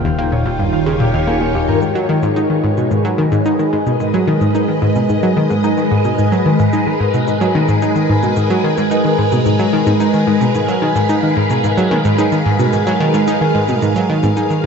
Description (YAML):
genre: ambient, sequencer-driven space music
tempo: 110 BPM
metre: 4/4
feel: straight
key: G# dorian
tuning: A4 = 441 Hz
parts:
  - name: phased string machine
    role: sustained chords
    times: 0.0-14.7 s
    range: Eb3 to E#5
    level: -17 LUFS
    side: equal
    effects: ensemble chorus, phaser
  - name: concert harp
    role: arpeggios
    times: 0.0-14.7 s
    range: G#3 to F5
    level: -23 LUFS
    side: left 1 dB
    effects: auto-pan, analog delay
  - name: analog pluck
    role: riff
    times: 0.0-14.7 s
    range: Eb2 to D#4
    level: -15 LUFS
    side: equal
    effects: chorus, cassette tape, analog delay
  - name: fat analog bass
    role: bass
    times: 0.0-1.8 s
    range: Eb1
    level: -24 LUFS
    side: equal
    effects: none
  - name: pulsing gated texture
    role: texture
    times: 0.0-1.8 s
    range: G5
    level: -31 LUFS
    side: equal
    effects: chorus, built-in reverb
  - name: electronic cabasa and toms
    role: percussion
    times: 1.8-14.6 s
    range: none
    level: -31 LUFS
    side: left 4 dB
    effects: analog delay
room: moderate huge ambient reverb, RT60 8.2 s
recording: nothing above 7.9 kHz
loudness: -12 LUFS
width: side -6 dB against mid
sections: 0.0-1.8 A section; 1.8-14.7 B section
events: fade-in on harp 1.8-14.7; fade-in on drum 1.8-14.7; fade-out 13.5-14.7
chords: 0.0 Eb7; 1.8 G#madd9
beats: 0.18 0.73 1.28 | 1.82 2.37 2.91 3.46 | 4.00 4.55 5.09 5.64 | 6.18 6.73 7.28 7.82 | 8.37 8.91 9.46 10.00 | 10.55 11.09 11.64 12.19 | 12.73 13.28 13.82 14.37